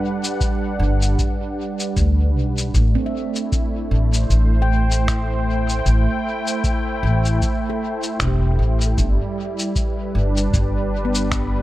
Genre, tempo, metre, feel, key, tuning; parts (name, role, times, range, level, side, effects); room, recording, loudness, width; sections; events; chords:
ambient dub; 77 BPM; 4/4; swing 57% on 16ths; A dorian; A4 = 440 Hz
warm analog pad; sustained chords; 0.0-11.6 s; G3 to G5; -24 LUFS; right 1 dB; chorus
handpan; arpeggios; 0.0-11.6 s; B3 to G5; -31 LUFS; right 1 dB; tape echo
electronic cabasa and finger snaps; drums; 0.2-11.5 s; -28 LUFS; left 2 dB; overdrive, dub echo
electronic kick drum; drums; 0.4-11.5 s; -23 LUFS; equal
upright bass; bass; 0.8-11.6 s; E1 to D2; -18 LUFS; equal
light reverb, small room ambience; -17 LUFS; side -16 dB against mid
0.0-11.6 A section
0.0 Gmaj7; 2.7 Am7; 9.0 G